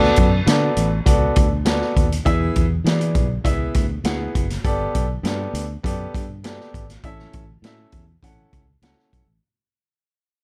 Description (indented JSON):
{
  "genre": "uptempo 1960s-style soul",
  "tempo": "101 BPM",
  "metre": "4/4",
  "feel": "straight",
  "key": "unclear",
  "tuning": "A4 = 438 Hz",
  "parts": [
    { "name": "clear concert grand piano", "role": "accompaniment", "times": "0.0-9.2 s", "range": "B3 to F#5", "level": "-26 LUFS", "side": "equal", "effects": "none" },
    { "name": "fingered electric bass", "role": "bass", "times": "0.0-9.4 s", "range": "F#1 to E3", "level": "-25 LUFS", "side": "equal", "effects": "none" },
    { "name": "vintage drum kit", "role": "drums", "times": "0.0-9.3 s", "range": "hi-hat, kick drum, snare drum", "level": "-24 LUFS", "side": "equal", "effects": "none" }
  ],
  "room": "light reverb",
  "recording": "dark, warm production",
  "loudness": "-20 LUFS",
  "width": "mono",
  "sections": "0.0-9.4 A section",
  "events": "fade-out 0.0-9.4",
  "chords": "0.0 D6; 2.3 E; 4.6 Gadd9; 7.0 A"
}